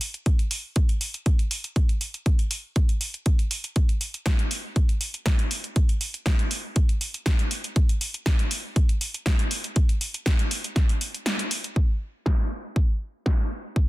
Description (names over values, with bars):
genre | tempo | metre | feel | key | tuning
house | 120 BPM | 4/4 | straight | none | none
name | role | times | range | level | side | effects
punchy analog drum machine | drums | 0.0-13.4 s | hi-hat, snare drum | -29 LUFS | equal | overdrive, sidechain pumping on hats, low-pass filter on hats, low-pass filter on snare, low-pass filter on room
electronic kick drum | drums | 0.3-13.9 s | none | -21 LUFS | equal | none
room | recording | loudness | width
little or no reverb | dense, heavily limited modern master | -22 LUFS | side -19 dB against mid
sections
0.0-11.8 A section; 11.8-13.9 B section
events
break 11.3-11.8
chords
none